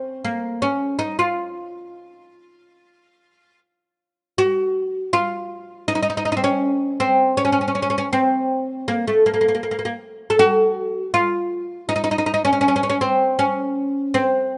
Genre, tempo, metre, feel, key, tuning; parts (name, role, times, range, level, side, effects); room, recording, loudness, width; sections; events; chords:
arabic; 80 BPM; 4/4; straight; F maqam hijaz; A4 = 442 Hz
oud; solo; 0.0-14.6 s; A3 to A4; -20 LUFS; equal
studio reverb; rough home demo mix, nothing above 10.9 kHz; -20 LUFS; mono
0.0-4.4 A section; 4.4-14.6 B section